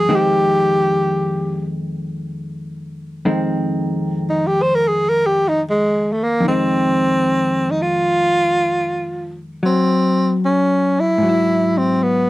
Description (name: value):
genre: jazz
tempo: 75 BPM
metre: 4/4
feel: swing 69% on 8ths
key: F minor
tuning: A4 = 441 Hz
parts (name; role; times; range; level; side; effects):
- breathy tenor saxophone; melody; 0.0-12.3 s; Ab3 to C5; -16 LUFS; equal; none
- vintage hollow-body jazz guitar; accompaniment; 0.0-12.3 s; F2 to E4; -20 LUFS; left 1 dB; none
room: light reverb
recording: dry, close 1970s-style studio recording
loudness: -15 LUFS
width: side -17 dB against mid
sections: 0.0-6.4 A section; 6.4-12.3 B section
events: tenor saxophone solo 0.0-6.4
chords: 0.1 Fm7; 9.6 N.C.; 11.2 Ab7alt